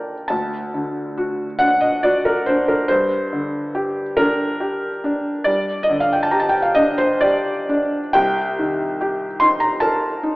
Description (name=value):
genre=classical, romantic nocturne for solo piano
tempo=42-50 BPM (dotted quarters)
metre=12/8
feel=rubato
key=unclear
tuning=A4 = 438 Hz
part: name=felt-muted upright piano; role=solo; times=0.0-10.4 s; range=C2 to C6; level=-17 LUFS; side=equal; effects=none
room=wet scoring stage reverb, RT60 1.7 s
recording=AM radio sound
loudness=-17 LUFS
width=side -21 dB against mid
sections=0.0-10.4 A section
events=none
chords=0.3 D; 2.9 Gm; 8.2 Cm7